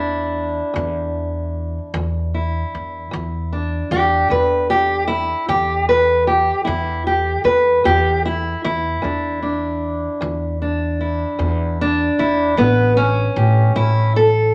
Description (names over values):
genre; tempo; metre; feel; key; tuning
acoustic country blues, solo or duo; 51 BPM (dotted quarters); 12/8; straight; unclear; A4 = 439 Hz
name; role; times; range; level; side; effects
fingerpicked steel-string acoustic guitar; melody; 0.0-14.5 s; E2 to B4; -20 LUFS; equal; none
upright bass; bass; 0.0-14.5 s; A1 to E2; -24 LUFS; equal; none
room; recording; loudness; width
moderate studio reverb, RT60 0.9 s; none; -18 LUFS; mono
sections
0.0-14.5 A section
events
none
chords
0.0 E7(no3); 12.6 A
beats
0.76 1.94 | 3.12 4.30 5.48 6.67 | 7.85 9.03 10.21 11.39 | 12.58 13.76